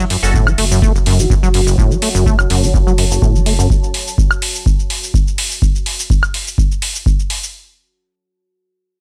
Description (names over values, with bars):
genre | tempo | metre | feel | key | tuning
acid house | 125 BPM | 4/4 | straight | F# minor | A4 = 440 Hz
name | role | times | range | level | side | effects
acid bass, saw | riff | 0.0-3.7 s | F#1 to A3 | -19 LUFS | equal | tube saturation, analog chorus, cassette tape, tape echo
electronic shaker, hi-hat and woodblock | drums | 0.0-7.5 s | none | -22 LUFS | equal | none
deep dark ambient pad | texture | 0.0-5.6 s | F#4 to A5 | -27 LUFS | equal | chorus, built-in reverb, sidechain pumping
round analog bass | bass | 0.2-3.7 s | F#1 | -19 LUFS | equal | sidechain pumping
electronic kick drum | drums | 0.3-7.2 s | none | -17 LUFS | equal | none
room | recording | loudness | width
light reverb | none | -14 LUFS | mono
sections
0.0-7.5 A section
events
fade-out on ambient pad 0.0-5.6; filter sweep on acid bass 0.0-3.7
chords
0.0 F#m